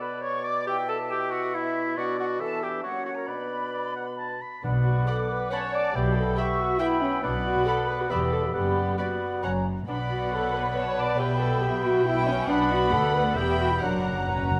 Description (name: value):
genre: quick classical-period movement for symphony orchestra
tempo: 137 BPM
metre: 3/4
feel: rubato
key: B minor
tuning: A4 = 440 Hz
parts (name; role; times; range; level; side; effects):
- flute section; second line; 0.0-14.6 s; E5 to D6; -35 LUFS; equal; none
- warm clarinet; second line; 0.0-14.6 s; E4 to G5; -36 LUFS; equal; none
- warm oboe; second line; 0.0-14.6 s; C#5 to B5; -35 LUFS; equal; none
- mellow bassoon; accompaniment; 0.0-14.6 s; B2 to C#4; -36 LUFS; equal; none
- dark French horn section; sustained chords; 0.0-14.6 s; A#3 to D5; -33 LUFS; equal; none
- dark chamber viola section; accompaniment; 4.6-14.6 s; C#4 to D5; -37 LUFS; equal; none
- dark chamber cello section; bass; 4.6-14.6 s; D2 to B2; -34 LUFS; equal; none
- warm chamber double bass section; bass; 4.6-14.6 s; E1 to D2; -33 LUFS; equal; none
- timpani; percussion; 4.6-5.3, 13.8-14.6 s; F#2 to B2; -35 LUFS; equal; none
- warm chamber violin section; melody; 5.1-14.6 s; G5 to B5; -38 LUFS; equal; none
- warm chamber violin section; second line; 5.1-14.6 s; A#4 to G5; -39 LUFS; equal; none
room: wet scoring stage reverb, RT60 1.7 s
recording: none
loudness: -26 LUFS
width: mono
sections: 0.0-4.6 A section; 4.6-14.6 B section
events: timpani fill 13.8-14.6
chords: 0.0 Bm; 0.7 E5/B; 2.0 Bm; 2.4 Em; 2.8 F#; 3.3 Bm; 6.0 Em/B; 7.2 Bm; 8.1 Em7; 8.5 Bm/F#; 9.4 F#; 9.9 Bm; 11.2 Em/B; 12.5 Bm; 13.4 Em; 13.8 F#